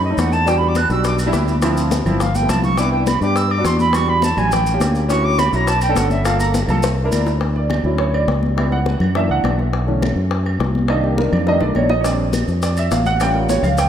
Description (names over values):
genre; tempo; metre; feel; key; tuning
Afro-Cuban jazz; 207 BPM; 4/4; straight; D major; A4 = 441 Hz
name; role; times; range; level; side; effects
bright reedy silver concert flute; melody; 0.0-6.5 s; D#5 to F#6; -20 LUFS; right 2 dB; tape echo
fingered electric bass; bass; 0.0-13.9 s; G1 to G2; -19 LUFS; equal; none
congas; percussion; 0.0-13.9 s; none; -24 LUFS; left 3 dB; none
warm grand piano; accompaniment; 0.1-13.9 s; D3 to G5; -20 LUFS; right 1 dB; analog chorus
bongos; percussion; 0.2-13.9 s; none; -26 LUFS; left 6 dB; none
claves; percussion; 0.2-13.8 s; none; -34 LUFS; right 5 dB; none
maracas; percussion; 0.2-7.4, 12.0-13.9 s; none; -32 LUFS; right 3 dB; none
room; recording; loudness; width
moderate plate reverb, RT60 2.6 s; dreamy mix soaked in reverb; -15 LUFS; side -9 dB against mid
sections
0.0-7.4 A section; 7.4-13.9 A section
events
flute solo 0.0-7.4; drum fill 2.2-2.8, 6.8-7.4, 11.5-12.0; grand piano solo 7.4-13.9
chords
0.5 Em9; 1.6 Dm9; 2.2 G13; 2.8 Cmaj7; 3.9 Em9; 4.5 A7b9; 5.1 Dmaj9; 5.7 Bm9; 6.3 Gm7; 6.8 C9; 7.4 Dmaj7; 8.6 C#m7b5; 9.2 F#7b13; 9.7 Bm11; 10.9 Cm9; 11.5 F13; 12.0 Bb69; 13.2 A7b13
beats
0.18 | 0.47 0.76 1.05 1.34 | 1.63 1.92 2.21 2.49 | 2.78 3.07 3.36 3.65 | 3.94 4.23 4.52 4.81 | 5.10 5.39 5.68 5.97 | 6.26 6.55 6.83 7.12 | 7.41 7.70 7.99 8.28 | 8.57 8.86 9.15 9.44 | 9.73 10.02 10.31 10.60 | 10.89 11.18 11.47 11.76 | 12.05 12.34 12.63 12.91 | 13.20 13.49 13.78